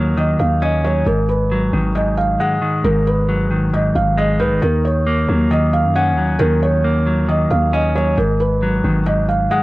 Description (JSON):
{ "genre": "hip hop, trap", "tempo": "135 BPM", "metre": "4/4", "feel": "half-time", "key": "G# dorian", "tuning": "A4 = 440 Hz", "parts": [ { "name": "felt-muted upright piano", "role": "melody", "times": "0.0-9.6 s", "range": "A#4 to F#5", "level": "-20 LUFS", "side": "right 2 dB", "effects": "none" }, { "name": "clean electric guitar", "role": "accompaniment", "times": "0.0-9.6 s", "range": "G#2 to C#4", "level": "-18 LUFS", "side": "equal", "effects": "none" }, { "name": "growling 808-style bass", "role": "bass", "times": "0.0-9.5 s", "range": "G#1 to F#2", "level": "-20 LUFS", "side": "equal", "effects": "none" } ], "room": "small room ambience", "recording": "dry, gritty hardware recording", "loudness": "-14 LUFS", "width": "side -19 dB against mid", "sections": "0.0-1.1 A section; 1.1-9.6 B section", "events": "none", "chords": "0.0 D#m7; 1.1 G#m7; 4.6 D#m7; 8.2 G#m7" }